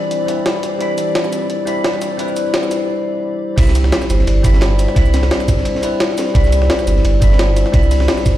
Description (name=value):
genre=liquid drum and bass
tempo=173 BPM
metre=4/4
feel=straight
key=unclear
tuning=A4 = 440 Hz
part: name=bell-like tine electric piano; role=accompaniment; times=0.0-8.4 s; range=G3 to B5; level=-22 LUFS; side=equal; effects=wide subtle chorus, tape echo
part: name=glassy FM pad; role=sustained chords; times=0.0-3.5 s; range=E3 to B5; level=-29 LUFS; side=left 1 dB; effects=ensemble chorus, built-in reverb, sidechain pumping
part: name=vibraphone with medium mallets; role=arpeggios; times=0.0-8.4 s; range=E4 to D5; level=-21 LUFS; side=left 4 dB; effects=low-pass filter, digital delay
part: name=jungle sampler-style drum kit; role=drums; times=0.1-8.3 s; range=cabasa, crash cymbal, hi-hat, snare drum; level=-22 LUFS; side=equal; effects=small room ambience
part: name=warm sub bass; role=bass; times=3.6-8.4 s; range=G1 to C2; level=-14 LUFS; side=right 1 dB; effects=tube saturation
part: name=crunchy breakbeat drum kit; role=drums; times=3.6-8.3 s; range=hi-hat, ride cymbal, snare drum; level=-27 LUFS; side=right 1 dB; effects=high-pass filter on cymbals, small room ambience, high-pass filter on hats, high-pass filter on snare, high-pass filter on room
part: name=electronic kick drum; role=drums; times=3.6-8.3 s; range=none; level=-13 LUFS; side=right 1 dB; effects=small room ambience
room=light reverb, studio reverb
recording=played on a big sound system in a bare room, stone room reverb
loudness=-13 LUFS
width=side -13 dB against mid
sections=0.0-3.6 A section; 3.6-8.4 B section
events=build-up 0.0-3.6; break 2.9-3.6; drop 3.6-8.4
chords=0.0 Cmaj9